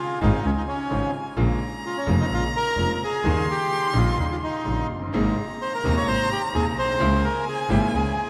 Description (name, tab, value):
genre	tango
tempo	129 BPM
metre	4/4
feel	rubato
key	Ab major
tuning	A4 = 444 Hz
part	bandoneon	melody	0.0-8.3 s	Db4 to Db5	-28 LUFS	equal	none
part	warm violin	second line	0.0-8.3 s	Ab5 to C6	-32 LUFS	equal	none
part	bright baby grand piano	accompaniment	0.2-8.1 s	Eb1 to F4	-31 LUFS	equal	none
part	clear double bass	bass	0.2-8.1 s	F1 to Eb2	-27 LUFS	equal	none
part	dark studio string section	stabs	5.1-8.1 s	Bb3 to Ab4	-34 LUFS	equal	none
room	wet cathedral reverb, RT60 5.9 s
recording	in a vast, echoing space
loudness	-24 LUFS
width	mono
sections	0.0-8.3 A section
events	none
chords	0.0 Dbmaj7; 1.4 Bbm7; 3.2 Eb7; 5.1 Abadd9; 7.0 Dbm6